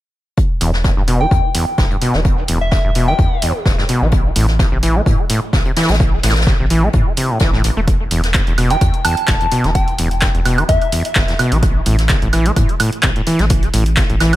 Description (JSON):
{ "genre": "acid house", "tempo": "128 BPM", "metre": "4/4", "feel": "swing 54% on 16ths", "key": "E minor", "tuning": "A4 = 440 Hz", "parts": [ { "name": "electronic kick drum", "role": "drums", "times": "0.4-14.1 s", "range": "none", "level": "-16 LUFS", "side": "equal", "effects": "overdrive, studio reverb" }, { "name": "jazz brush drum kit", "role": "drums", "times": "0.4-14.3 s", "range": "hi-hat, snare drum", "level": "-25 LUFS", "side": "left 2 dB", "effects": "high-pass filter on hats, studio reverb, high-pass filter on snare, high-pass filter on room, tape echo" }, { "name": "overdriven acid bass", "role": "riff", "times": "0.6-14.4 s", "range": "A1 to A3", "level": "-18 LUFS", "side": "equal", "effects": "tube saturation, sidechain pumping, tape echo" }, { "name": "round analog bass", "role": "bass", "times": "0.6-14.4 s", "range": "E1 to A2", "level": "-18 LUFS", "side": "equal", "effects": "sidechain pumping" }, { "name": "punchy analog drum machine", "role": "drums", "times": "0.6-14.4 s", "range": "handclaps, hi-hat, woodblock", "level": "-20 LUFS", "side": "right 2 dB", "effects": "overdrive, studio reverb" }, { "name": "soft synth bell", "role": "melody", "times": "1.2-3.4, 8.7-11.3 s", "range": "E5 to A5", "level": "-21 LUFS", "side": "left 1 dB", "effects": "chorus, phaser, dub echo" } ], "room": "light reverb", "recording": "echo-heavy mix", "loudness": "-13 LUFS", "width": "side -15 dB against mid", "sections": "0.4-14.4 A section", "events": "none", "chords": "0.4 Em; 4.1 Am; 7.9 E5; 11.6 A5" }